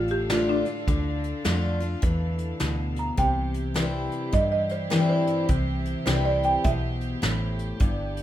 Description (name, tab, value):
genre	honky-tonk and classic country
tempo	104 BPM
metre	4/4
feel	swing 62% on 8ths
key	C major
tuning	A4 = 440 Hz
part	buzzing marimba with medium mallets	melody	0.0-7.8 s	D4 to Bb5	-26 LUFS	right 2 dB	none
part	picked steel-string acoustic guitar	accompaniment	0.0-8.2 s	G2 to F4	-28 LUFS	left 2 dB	none
part	clear studio string section	sustained chords	0.0-8.2 s	D3 to F5	-36 LUFS	right 3 dB	none
part	vintage muted fingered electric bass	bass	0.0-8.2 s	G1 to G2	-28 LUFS	right 1 dB	none
part	soft brush drum kit	drums	0.1-8.2 s	hi-hat, kick drum, snare drum	-27 LUFS	equal	none
room	light reverb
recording	minimal, uncompressed stereo recording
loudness	-23 LUFS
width	side -12 dB against mid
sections	0.0-8.2 A section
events	marimba solo 0.0-8.2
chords	0.0 Dm; 3.2 C